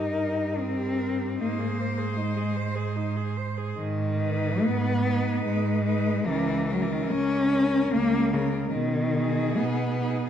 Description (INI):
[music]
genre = classical, lyrical piece for cello ensemble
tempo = 74 BPM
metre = 3/4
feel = uneven beats, rubato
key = Ab major, G# minor from 3.8 s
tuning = A4 = 441 Hz
[part]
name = rich cello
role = melody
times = 0.0-10.3 s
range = G#4 to C5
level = -36 LUFS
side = left 7 dB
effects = none
[part]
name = clear cello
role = second line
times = 0.0-10.3 s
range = C#4 to C5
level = -34 LUFS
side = right 7 dB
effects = none
[part]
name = rich cello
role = accompaniment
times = 0.0-10.3 s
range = C#3 to Eb4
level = -26 LUFS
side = left 3 dB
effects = none
[part]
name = rich cello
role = bass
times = 0.0-10.3 s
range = C#2 to B2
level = -28 LUFS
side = right 2 dB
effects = none
[sound]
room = moderate concert hall reverb, RT60 1.7 s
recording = dark, warm production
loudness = -24 LUFS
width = side -9 dB against mid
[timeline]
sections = 0.0-10.3 A section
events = none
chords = 0.0 Eb/G; 1.4 Ab; 3.8 G#m; 6.3 C#m6; 8.7 G#m/B